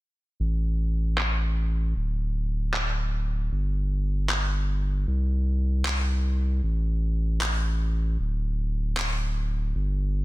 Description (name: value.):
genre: future bass.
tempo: 154 BPM.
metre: 4/4.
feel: half-time.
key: unclear.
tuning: A4 = 440 Hz.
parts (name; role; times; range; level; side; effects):
saturated sub bass; bass; 0.4-10.2 s; D1 to C2; -24 LUFS; equal; none.
electronic handclaps; drums; 1.2-9.1 s; none; -30 LUFS; equal; low-pass filter on snare, low-pass filter on room.
room: little or no reverb.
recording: dense, heavily limited modern master.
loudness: -24 LUFS.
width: side -19 dB against mid.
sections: 0.4-10.2 A section.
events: none.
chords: none.